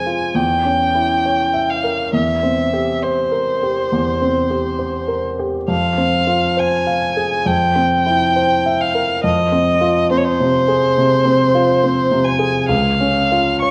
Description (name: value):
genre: classical, romantic duo for violin and grand piano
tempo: 68 BPM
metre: 4/4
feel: rubato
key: F minor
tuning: A4 = 440 Hz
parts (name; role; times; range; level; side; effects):
- rich violin; melody; 0.0-13.7 s; C5 to Db6; -20 LUFS; equal; none
- warm grand piano; accompaniment; 0.0-13.7 s; Db2 to F5; -20 LUFS; equal; none
room: wet recital hall reverb, RT60 1.7 s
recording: worn, warbling old tape, cassette tape, warbly pitch drift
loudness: -17 LUFS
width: mono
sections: 0.0-13.7 A section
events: none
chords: 0.4 Edim7; 2.1 C7/E; 5.7 Fm; 7.5 C7/F; 9.2 Fm; 12.7 Db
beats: 0.36 1.26 | 2.14 3.04 3.92 4.80 | 5.70 6.59 7.47 8.36 | 9.24 10.11 10.97 11.83 | 12.70 13.62